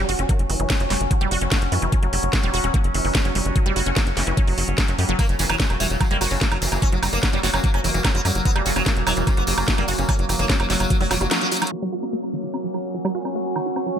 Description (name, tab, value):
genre	psychedelic trance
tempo	147 BPM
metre	4/4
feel	straight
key	F# major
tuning	A4 = 439 Hz
part	overtone-sweeping drone	sustained chords	0.0-14.0 s	F#3 to C#4	-27 LUFS	equal	chorus, built-in reverb, sidechain pumping
part	wide unison pluck	riff	0.0-14.0 s	E3 to G4	-27 LUFS	right 1 dB	auto-pan, sidechain pumping, ping-pong delay
part	tight sequencer bass	bass	0.0-11.3 s	E1 to F#2	-24 LUFS	equal	tube saturation
part	garage drum kit	drums	0.1-14.0 s	hi-hat, snare drum, woodblock	-26 LUFS	right 1 dB	low-pass filter on hats, low-pass filter on snare, low-pass filter on cymbals, low-pass filter on perc
part	electronic kick drum	drums	0.3-11.0 s	none	-21 LUFS	equal	none
part	sitar	melody	5.2-11.7 s	C#3 to C#4	-27 LUFS	right 1 dB	phaser, sidechain pumping, dub echo
part	tambourine	percussion	5.2-14.0 s	none	-31 LUFS	left 2 dB	none
room	light reverb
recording	low-pass filter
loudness	-18 LUFS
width	side -9 dB against mid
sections	0.0-11.7 A section; 11.7-14.0 B section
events	band accent 11.3; drum fill 11.5; filter sweep on drum 11.7-14.0; filter sweep on synth arpeggio sound 11.7-14.0; filter sweep 11.7-14.0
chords	0.0 F#5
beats	| 0.29 0.70 1.11 1.52 | 1.92 2.33 2.74 3.15 | 3.56 3.96 4.37 4.78 | 5.19 5.60 6.00 6.41 | 6.82 7.23 7.64 8.05 | 8.45 8.86 9.27 9.68 | 10.09 10.49 10.90 11.31 | 11.72 12.13 12.54 12.94 | 13.35 13.76